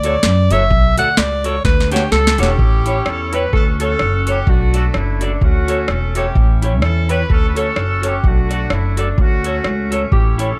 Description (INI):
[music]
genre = ska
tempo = 128 BPM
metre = 4/4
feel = swing 57% on 8ths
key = D major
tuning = A4 = 440 Hz
[part]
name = bright alto saxophone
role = melody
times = 0.0-2.6 s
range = G4 to F#5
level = -20 LUFS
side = equal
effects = none
[part]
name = clean electric guitar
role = accompaniment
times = 0.0-10.5 s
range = D4 to D5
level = -26 LUFS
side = equal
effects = none
[part]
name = upright bass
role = bass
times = 0.0-10.5 s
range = E1 to F#2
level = -20 LUFS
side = equal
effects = none
[part]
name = booming analog drum machine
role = drums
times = 0.0-10.5 s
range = hi-hat, kick drum, rim click, snare drum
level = -18 LUFS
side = equal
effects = overdrive
[part]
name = warm horn section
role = melody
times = 2.1-10.6 s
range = A3 to B4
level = -23 LUFS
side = equal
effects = slapback echo
[sound]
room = small room ambience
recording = none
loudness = -16 LUFS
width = mono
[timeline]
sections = 0.0-2.6 A section; 2.6-10.6 B section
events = alto saxophone solo 0.0-2.6; drum fill 1.7-2.6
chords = 0.0 Dmaj7; 0.7 Bm7; 1.7 Dmaj7; 2.6 A7; 3.5 Dmaj7; 4.5 Bm7; 5.4 Dmaj7; 6.4 A7; 7.3 Dmaj7; 8.2 Bm7; 9.2 Dmaj7